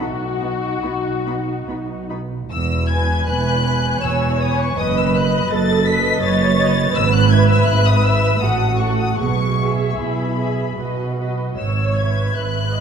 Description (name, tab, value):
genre	classical, slow romantic movement for string orchestra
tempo	70-83 BPM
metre	3/4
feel	rubato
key	E major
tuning	A4 = 442 Hz
part	muted symphonic violin section	melody	0.0-12.8 s	B5 to B6	-24 LUFS	left 5 dB	none
part	muted studio violin section	second line	0.0-12.8 s	F#4 to G#5	-24 LUFS	left 3 dB	none
part	muted studio viola section	accompaniment	0.0-12.8 s	B3 to D#5	-24 LUFS	right 2 dB	none
part	muted studio cello section	bass	0.0-12.8 s	E2 to D#4	-21 LUFS	right 2 dB	none
part	muted studio double bass section	bass	0.0-12.8 s	E1 to B1	-22 LUFS	right 3 dB	none
room	wet concert hall reverb, RT60 2.4 s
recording	minimal, uncompressed stereo recording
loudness	-16 LUFS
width	side -7 dB against mid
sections	0.0-2.5 A section; 2.5-12.8 B section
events	none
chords	0.0 B; 2.5 E; 4.8 B7/F#; 6.9 E/G#; 8.4 F#m/A; 9.2 E/B; 10.8 B; 11.6 E/G#